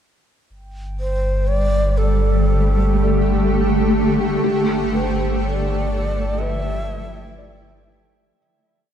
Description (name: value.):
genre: ambient.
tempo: 61 BPM.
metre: 4/4.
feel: straight.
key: G mixolydian.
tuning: A4 = 440 Hz.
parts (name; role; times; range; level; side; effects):
shimmering ambient pad; sustained chords; 1.5-8.4 s; D3 to A4; -20 LUFS; equal; chorus, built-in reverb.
warm sub bass; bass; 0.5-8.3 s; G1; -21 LUFS; equal; none.
analog drone; drone; 3.0-8.5 s; none; barely audible; none; none.
glass harmonica; texture; 0.5-8.4 s; G5; -37 LUFS; right 2 dB; none.
breathy bright long shakuhachi; melody; 1.0-7.9 s; A4 to E5; -26 LUFS; equal; diffuse ambient delay.
felt-muted upright piano; arpeggios; 4.4-8.8 s; G4 to D5; -28 LUFS; left 1 dB; diffuse ambient delay.
room: moderate huge ambient reverb, RT60 7.2 s.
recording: in a vast, echoing space, cassette tape.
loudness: -16 LUFS.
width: side -9 dB against mid.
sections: 0.5-8.4 A section.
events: fade-in on glass harmonica 0.5-8.4; fade-out 4.4-8.4.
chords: 0.5 Gsus2; 4.4 Dmadd9/G.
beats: | 0.50 1.49 2.47 3.45 | 4.44 5.42 6.40 7.39.